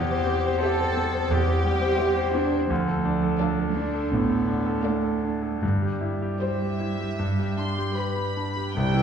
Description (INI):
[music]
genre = classical, romantic movement for piano and orchestra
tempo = 75-89 BPM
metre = 4/4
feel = rubato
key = C major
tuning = A4 = 440 Hz
[part]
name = bright concert grand piano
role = melody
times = 0.0-9.0 s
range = C2 to C5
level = -25 LUFS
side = left 2 dB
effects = none
[part]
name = dark studio cello section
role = bass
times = 0.0-9.0 s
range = C3 to A4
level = -27 LUFS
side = right 4 dB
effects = none
[part]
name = warm studio double bass section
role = bass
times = 0.0-9.0 s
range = A1 to G2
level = -30 LUFS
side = right 3 dB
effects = none
[part]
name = rich studio violin section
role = melody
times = 0.6-9.0 s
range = E5 to C6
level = -34 LUFS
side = left 1 dB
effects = none
[part]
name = rich studio violin section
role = second line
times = 0.6-8.6 s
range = B4 to D5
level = -39 LUFS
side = left 3 dB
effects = none
[part]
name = warm studio viola section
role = accompaniment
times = 0.6-9.0 s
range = C3 to A4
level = -33 LUFS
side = right 2 dB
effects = none
[part]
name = timpani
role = percussion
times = 5.6-6.8 s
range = G2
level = -33 LUFS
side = equal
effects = none
[part]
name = mellow French horn section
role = sustained chords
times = 8.8-9.0 s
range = G3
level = -26 LUFS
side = left 3 dB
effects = none
[sound]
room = wet recital hall reverb, RT60 1.3 s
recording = heard from further back in the room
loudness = -22 LUFS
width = side -7 dB against mid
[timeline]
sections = 0.0-8.8 A section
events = none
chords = 0.0 C/E; 2.7 Dm; 5.6 C/G